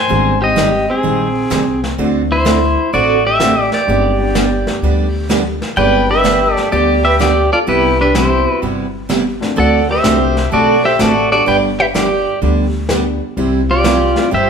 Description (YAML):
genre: country, western swing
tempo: 126 BPM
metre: 4/4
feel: swing 67% on 8ths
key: unclear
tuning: A4 = 440 Hz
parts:
  - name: pedal steel guitar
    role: melody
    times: 0.0-14.5 s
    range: C4 to Ab5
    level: -14 LUFS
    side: left 1 dB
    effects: none
  - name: picked steel-string acoustic guitar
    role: accompaniment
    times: 0.1-14.5 s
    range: C3 to A4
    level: -18 LUFS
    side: right 3 dB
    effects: none
  - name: warm upright piano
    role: accompaniment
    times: 0.1-14.3 s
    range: G3 to G5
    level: -24 LUFS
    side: left 4 dB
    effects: none
  - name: upright bass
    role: bass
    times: 0.1-14.5 s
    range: G1 to D2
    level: -20 LUFS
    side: left 1 dB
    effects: none
  - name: vintage brush drum kit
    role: drums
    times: 0.1-14.5 s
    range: brushed snare drum, hi-hat, snare drum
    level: -22 LUFS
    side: equal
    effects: none
  - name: dark fiddle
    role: second line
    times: 5.8-14.5 s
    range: G4 to D5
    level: -19 LUFS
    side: right 3 dB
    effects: none
room: moderate large studio reverb, RT60 1.2 s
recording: band playing live in one room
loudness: -11 LUFS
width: side -6 dB against mid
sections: 0.0-14.5 A section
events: none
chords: 0.1 Abmaj7; 2.0 D7; 3.9 G; 7.7 Cmaj7; 9.6 D7; 11.5 G; 13.4 C